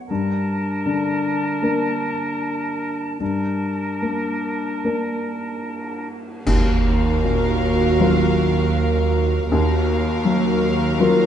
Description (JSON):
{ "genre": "cinematic, emotional film score for orchestra", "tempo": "73-82 BPM", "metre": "4/4", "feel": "rubato", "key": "unclear", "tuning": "A4 = 440 Hz", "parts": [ { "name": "felt-muted upright piano", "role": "accompaniment", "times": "0.0-11.3 s", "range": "Eb2 to C#5", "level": "-23 LUFS", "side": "left 3 dB", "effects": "none" }, { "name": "clear oboe", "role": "second line", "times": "0.1-6.1 s", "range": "Bb4", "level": "-29 LUFS", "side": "right 1 dB", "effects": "none" }, { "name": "dark clarinet", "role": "second line", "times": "0.1-6.1 s", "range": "D4", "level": "-28 LUFS", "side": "left 2 dB", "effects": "none" }, { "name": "small flute group", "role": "second line", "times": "0.1-6.1 s", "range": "A5", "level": "-31 LUFS", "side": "right 2 dB", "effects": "none" }, { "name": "cymbal swell, clash cymbals and concert bass drum", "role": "percussion", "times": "3.2-8.0 s", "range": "none", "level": "-24 LUFS", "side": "right 1 dB", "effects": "none" }, { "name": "dark studio violin section", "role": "melody", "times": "6.5-11.3 s", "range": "F5", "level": "-29 LUFS", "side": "left 4 dB", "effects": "none" }, { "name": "warm symphonic violin section", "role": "second line", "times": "6.5-11.3 s", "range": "Bb4", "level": "-25 LUFS", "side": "left 3 dB", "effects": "none" }, { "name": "dark symphonic viola section", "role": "accompaniment", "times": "6.5-11.3 s", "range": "Gb4", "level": "-26 LUFS", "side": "right 2 dB", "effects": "none" }, { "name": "clear symphonic cello section", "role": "bass", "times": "6.5-11.3 s", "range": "Eb2", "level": "-24 LUFS", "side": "right 3 dB", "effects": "none" }, { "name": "warm symphonic double bass section", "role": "bass", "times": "6.5-11.3 s", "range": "Eb2", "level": "-23 LUFS", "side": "right 4 dB", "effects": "none" } ], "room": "moderate scoring stage reverb, RT60 1.5 s", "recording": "dark, warm production, nothing above 10.9 kHz", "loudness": "-18 LUFS", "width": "side -9 dB against mid", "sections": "0.0-6.5 A section; 6.5-11.3 A section", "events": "band accent 6.5-7.2", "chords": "0.1 Gmadd9; 6.5 Ebmadd9", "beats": "| 0.09 0.86 1.62 2.40 | 3.20 4.02 4.84 5.65 | 6.45 7.23 8.00 8.76 | 9.51 10.25 10.99" }